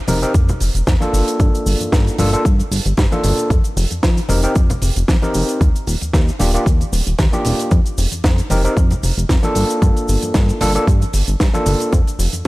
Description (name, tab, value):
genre	nu-disco, nu disco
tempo	114 BPM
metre	4/4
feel	swing 54% on 16ths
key	unclear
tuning	A4 = 439 Hz
part	overdriven tine electric piano	accompaniment	0.1-11.9 s	Bb3 to Bb4	-21 LUFS	equal	tape echo
part	chorused synth bass	bass	0.1-12.5 s	Eb1 to G2	-18 LUFS	equal	sidechain pumping
part	tight funk drum kit	drums	0.1-12.5 s	cabasa, hi-hat, snare drum	-24 LUFS	right 1 dB	studio reverb
part	congas and cabasa	percussion	0.1-12.5 s	none	-27 LUFS	left 2 dB	none
part	electronic kick drum	drums	0.3-12.0 s	none	-15 LUFS	equal	studio reverb
room	studio ambience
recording	dry, gritty hardware recording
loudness	-14 LUFS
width	side -20 dB against mid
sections	0.0-12.5 A section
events	none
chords	0.0 F7sus4; 1.1 Gm9; 3.5 F7sus4; 5.6 Ebmaj7; 7.7 Fsus4; 9.6 Gm9; 11.9 N.C.